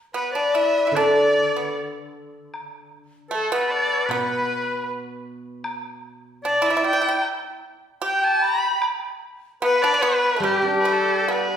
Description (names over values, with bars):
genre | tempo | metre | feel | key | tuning
chinese traditional, Chinese chamber ensemble | 76 BPM | 4/4 | rubato | G gong mode | A4 = 435 Hz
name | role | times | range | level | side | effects
rich erhu | melody | 0.1-11.6 s | G4 to B5 | -25 LUFS | equal | none
breathy bright xiao | second line | 0.1-11.6 s | G4 to B5 | -25 LUFS | left 2 dB | none
bright oboe | second line | 0.1-11.6 s | G4 to G5 | -25 LUFS | right 1 dB | none
pipa | second line | 0.1-11.6 s | G3 to G4 | -27 LUFS | right 3 dB | none
steel-string zither | accompaniment | 0.9-11.6 s | B2 to D4 | -26 LUFS | left 1 dB | none
woodblock | percussion | 1.0-11.5 s | none | -35 LUFS | equal | none
room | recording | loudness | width
wet recital hall reverb, RT60 1.4 s | recorded in a church or concert hall | -19 LUFS | side -8 dB against mid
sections
0.0-11.6 A section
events
none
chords
none